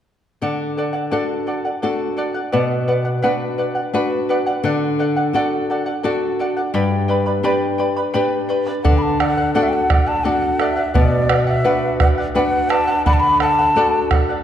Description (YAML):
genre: andean folk, Andean ensemble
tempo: 86 BPM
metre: 3/4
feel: straight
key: unclear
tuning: A4 = 444 Hz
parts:
  - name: charango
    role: accompaniment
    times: 0.4-14.4 s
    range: G4 to B5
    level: -21 LUFS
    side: equal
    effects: none
  - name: flamenco guitar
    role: accompaniment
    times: 0.4-14.3 s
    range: G2 to B4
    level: -20 LUFS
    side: left 2 dB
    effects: none
  - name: mellow hollow quena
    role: melody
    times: 8.8-14.1 s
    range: D5 to B5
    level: -19 LUFS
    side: left 1 dB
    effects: none
  - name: bombo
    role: percussion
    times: 8.8-14.3 s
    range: none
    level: -19 LUFS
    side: right 2 dB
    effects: none
room: wet concert hall reverb, RT60 2.3 s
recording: dark, warm production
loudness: -16 LUFS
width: side -10 dB against mid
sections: 0.4-8.9 A section; 8.9-14.4 B section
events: none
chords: 0.4 D; 2.5 Bm; 4.6 D; 6.7 G; 8.9 D; 11.0 Bm; 13.1 D